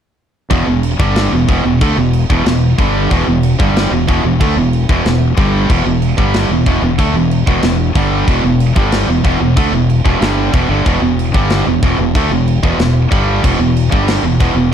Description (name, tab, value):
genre	heavy metal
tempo	93 BPM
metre	4/4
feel	straight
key	E minor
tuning	A4 = 441 Hz
part	scooped high-gain guitar	riff	0.5-14.7 s	E2 to A3	-17 LUFS	left 11 dB	distortion
part	tight distorted guitar	riff	0.5-14.7 s	E2 to A3	-16 LUFS	right 9 dB	distortion
part	fuzz fingered electric bass	bass	0.5-14.7 s	E1 to D2	-17 LUFS	equal	overdrive
part	tight metal drum kit	drums	0.5-14.6 s	crash cymbal, kick drum, snare drum	-17 LUFS	equal	none
room	little or no reverb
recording	dark, warm production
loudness	-11 LUFS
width	side -8 dB against mid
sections	0.5-14.7 A section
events	none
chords	0.5 Em